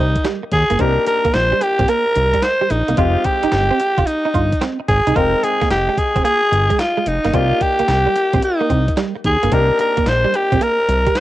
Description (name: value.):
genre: R&B, new jack swing.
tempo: 110 BPM.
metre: 4/4.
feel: swing 66% on 16ths.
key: C minor.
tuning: A4 = 440 Hz.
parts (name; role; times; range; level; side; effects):
raspy alto saxophone; melody; 0.0-11.2 s; Eb4 to C5; -16 LUFS; equal; cassette tape.
bright concert grand piano; accompaniment; 0.0-11.2 s; Ab3 to G5; -27 LUFS; left 9 dB; cassette tape, plate reverb.
direct-recorded clean electric guitar; riff; 0.0-11.1 s; G3 to F4; -23 LUFS; right 7 dB; ensemble chorus, cassette tape.
fat analog bass; bass; 0.0-11.1 s; F1 to Eb2; -18 LUFS; equal; none.
crisp 8-bit digital drum machine; drums; 0.2-11.2 s; handclaps, hi-hat, kick drum, snare drum; -22 LUFS; equal; cassette tape.
room: light reverb.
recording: home recording on cassette.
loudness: -14 LUFS.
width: side -15 dB against mid.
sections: 0.0-11.2 A section.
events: none.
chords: 0.0 Cm7; 3.0 Fm7; 7.3 Cm7.